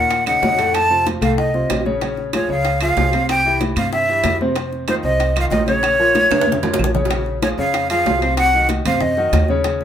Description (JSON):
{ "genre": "latin, salsa", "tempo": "189 BPM", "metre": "4/4", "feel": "straight", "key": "Bb minor", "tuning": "A4 = 440 Hz", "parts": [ { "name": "breathy bright jazz flute", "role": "melody", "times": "0.0-9.5 s", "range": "C5 to A5", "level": "-17 LUFS", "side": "equal", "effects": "none" }, { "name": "clear concert grand piano", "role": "accompaniment", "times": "0.0-9.8 s", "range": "A2 to Db5", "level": "-22 LUFS", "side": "left 2 dB", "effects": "none" }, { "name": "upright bass", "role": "bass", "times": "0.0-9.8 s", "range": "Bb1 to G2", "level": "-23 LUFS", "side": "right 1 dB", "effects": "none" }, { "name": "bongos", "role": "percussion", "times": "0.1-9.8 s", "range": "none", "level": "-28 LUFS", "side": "left 3 dB", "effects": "none" }, { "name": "congas", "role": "percussion", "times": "0.1-9.8 s", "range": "none", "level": "-26 LUFS", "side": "left 1 dB", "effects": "none" }, { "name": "timbales", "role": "percussion", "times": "0.1-9.8 s", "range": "none", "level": "-26 LUFS", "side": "right 4 dB", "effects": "none" }, { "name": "claves", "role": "percussion", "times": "0.3-7.0 s", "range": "none", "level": "-32 LUFS", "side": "right 4 dB", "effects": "none" } ], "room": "wet small room reverb, RT60 0.5 s", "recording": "band playing live in one room", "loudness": "-15 LUFS", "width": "side -9 dB against mid", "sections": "0.0-7.1 A section; 7.1-9.8 A section", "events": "drum fill 6.3-7.1", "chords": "0.0 Ebm7; 0.7 F; 2.0 Bbm7; 3.3 C; 4.6 F5; 5.8 Bbm; 7.1 Bbm7; 8.4 Cdim", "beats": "0.11 0.43 | 0.74 1.06 1.38 1.70 | 2.02 2.33 2.65 2.97 | 3.29 3.61 3.93 4.24 | 4.56 4.88 5.20 5.52 | 5.83 6.15 6.47 6.79 | 7.11 7.42 7.74 8.06 | 8.38 8.69 9.01 9.33 | 9.64" }